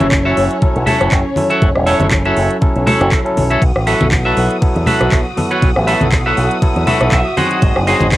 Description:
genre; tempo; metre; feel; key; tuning
nu-disco, nu disco; 120 BPM; 4/4; swing 55% on 16ths; unclear; A4 = 440 Hz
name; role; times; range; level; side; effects
bell-like tine electric piano; accompaniment; 0.0-8.2 s; F#3 to A4; -19 LUFS; equal; sidechain pumping, cassette tape, analog delay
dark studio string section; sustained chords; 0.0-8.2 s; C#4 to D#6; -22 LUFS; left 1 dB; sidechain pumping, cassette tape
clean electric guitar; riff; 0.0-8.1 s; F#4 to F#5; -17 LUFS; right 1 dB; wide subtle chorus, cassette tape
fingered electric bass with an envelope filter; bass; 0.0-8.2 s; E1 to E2; -17 LUFS; equal; none
house drum kit; drums; 0.0-8.2 s; handclaps, hi-hat, ride cymbal, rim click; -22 LUFS; equal; overdrive, cassette tape
congas; percussion; 0.0-8.1 s; none; -19 LUFS; left 1 dB; none
electronic kick drum; drums; 0.1-8.2 s; none; -15 LUFS; equal; cassette tape
room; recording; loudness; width
light reverb; home recording on cassette; -11 LUFS; side -15 dB against mid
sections
0.0-8.2 A section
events
clean electric guitar fill 6.9-7.6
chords
0.0 F#m7; 3.6 B7sus4; 7.4 G#7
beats
0.12 0.62 1.12 | 1.62 2.12 2.62 3.12 | 3.62 4.12 4.62 5.12 | 5.62 6.12 6.62 7.12 | 7.62 8.12

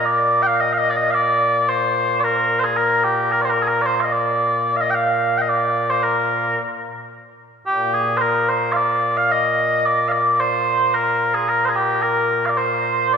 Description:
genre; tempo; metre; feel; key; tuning
scottish traditional; 110 BPM; 4/4; straight; Bb mixolydian; A4 = 441 Hz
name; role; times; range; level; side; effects
mellow small bagpipes; solo; 0.0-13.2 s; Bb2 to G5; -16 LUFS; equal; none
room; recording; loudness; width
wet concert hall reverb, RT60 2.6 s; recorded in a church or concert hall; -16 LUFS; side -6 dB against mid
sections
0.0-13.2 A section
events
none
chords
none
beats
0.03 0.58 | 1.12 1.67 2.22 2.76 | 3.31 3.85 4.40 4.94 | 5.49 6.03 6.58 7.12 | 7.67 8.22 8.76 9.31 | 9.85 10.40 10.94 11.49 | 12.03 12.58 13.12

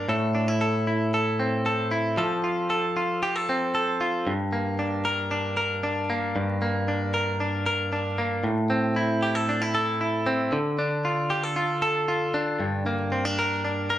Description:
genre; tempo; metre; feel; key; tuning
indie pop; 115 BPM; 4/4; straight; G dorian; A4 = 441 Hz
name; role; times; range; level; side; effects
direct-recorded clean electric guitar; solo; 0.0-14.0 s; G2 to Bb4; -23 LUFS; equal; none
room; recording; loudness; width
moderate large studio reverb, RT60 0.8 s; band playing live in one room, vinyl crackle; -23 LUFS; side -12 dB against mid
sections
0.0-4.3 A section; 4.3-14.0 B section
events
none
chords
0.1 Am; 2.2 F; 4.3 Gm; 8.4 Am; 10.5 Dm; 12.6 Gm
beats
| 0.09 0.61 1.14 1.66 | 2.18 2.71 3.23 3.75 | 4.27 4.79 5.32 5.84 | 6.36 6.88 7.40 7.92 | 8.44 8.96 9.48 10.00 | 10.52 11.04 11.56 12.08 | 12.60 13.12 13.64

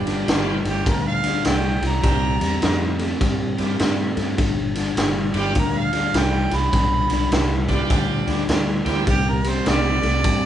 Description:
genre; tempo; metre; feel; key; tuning
electric blues shuffle; 102 BPM; 4/4; swing 63% on 8ths; G mixolydian; A4 = 443 Hz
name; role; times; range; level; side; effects
bright tonewheel organ; accompaniment; 0.0-10.0 s; G3 to G4; -28 LUFS; right 5 dB; slow rotary speaker, overdrive
electric guitar through a small old amp; riff; 0.0-10.5 s; G2 to A3; -25 LUFS; left 2 dB; none
vintage muted fingered electric bass; bass; 0.0-10.5 s; G1 to G2; -25 LUFS; equal; none
raw garage drum kit; drums; 0.1-10.4 s; kick drum, ride cymbal, snare drum; -22 LUFS; equal; none
warm harmonica; melody; 0.7-10.5 s; G4 to B5; -24 LUFS; right 2 dB; overdrive
room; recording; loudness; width
light reverb; band playing live in one room, nothing above 10.4 kHz; -18 LUFS; side -10 dB against mid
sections
0.0-10.5 A section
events
harmonica solo 0.0-10.5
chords
0.0 G7; 2.0 C7; 4.4 G7; 9.1 C7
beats
0.28 0.86 1.45 | 2.04 2.62 3.21 3.80 | 4.38 4.97 5.55 6.14 | 6.73 7.31 7.90 8.48 | 9.07 9.66 10.24

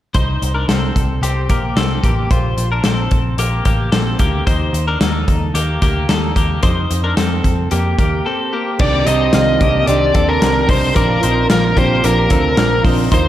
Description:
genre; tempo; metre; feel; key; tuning
jangly indie pop; 111 BPM; 4/4; straight; Bb major; A4 = 439 Hz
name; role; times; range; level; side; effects
twelve-string electric guitar; arpeggios; 0.1-13.3 s; Bb3 to D5; -20 LUFS; left 2 dB; spring reverb, slapback echo
vintage muted picked electric bass; bass; 0.1-13.3 s; A1 to F2; -18 LUFS; equal; none
modern studio drum kit; drums; 0.1-13.2 s; crash cymbal, hi-hat, kick drum, snare drum; -17 LUFS; equal; none
biting lead guitar; melody; 8.8-13.3 s; Bb4 to Eb5; -16 LUFS; equal; overdrive
fingerpicked plugged-in steel-string acoustic guitar; accompaniment; 8.8-13.3 s; Bb2 to G4; -19 LUFS; right 4 dB; none
room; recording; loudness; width
moderate lush hall reverb, RT60 1.7 s, small room ambience; big arena sound; -13 LUFS; side -12 dB against mid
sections
0.1-8.8 A section; 8.8-13.3 B section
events
break 8.3-8.8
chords
0.1 Cmadd9; 2.3 Bbadd9; 4.5 Eb5; 6.6 F7sus4; 8.8 Cmadd9; 11.0 Bbadd9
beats
| 0.15 0.69 1.23 1.77 | 2.31 2.85 3.39 3.93 | 4.47 5.01 5.55 6.09 | 6.64 7.18 7.72 8.26 | 8.80 9.34 9.88 10.42 | 10.96 11.50 12.04 12.58 | 13.12

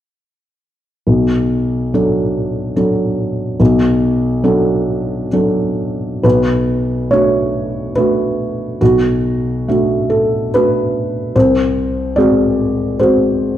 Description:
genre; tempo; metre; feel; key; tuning
neoclassical minimalist piano; 70 BPM; 3/4; uneven beats, rubato; B minor; A4 = 440 Hz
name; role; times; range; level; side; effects
felt-muted upright piano; solo; 1.1-13.6 s; B1 to D5; -13 LUFS; equal; none
room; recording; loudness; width
moderate recital hall reverb, RT60 1.6 s; recorded in a church or concert hall; -13 LUFS; side -11 dB against mid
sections
1.1-6.2 A section; 6.2-13.6 B section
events
none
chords
1.1 Bm7; 11.3 G#7/B#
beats
| 1.07 1.94 2.77 | 3.60 4.44 5.32 | 6.24 7.10 7.95 | 8.80 9.66 10.52 | 11.35 12.17 12.99

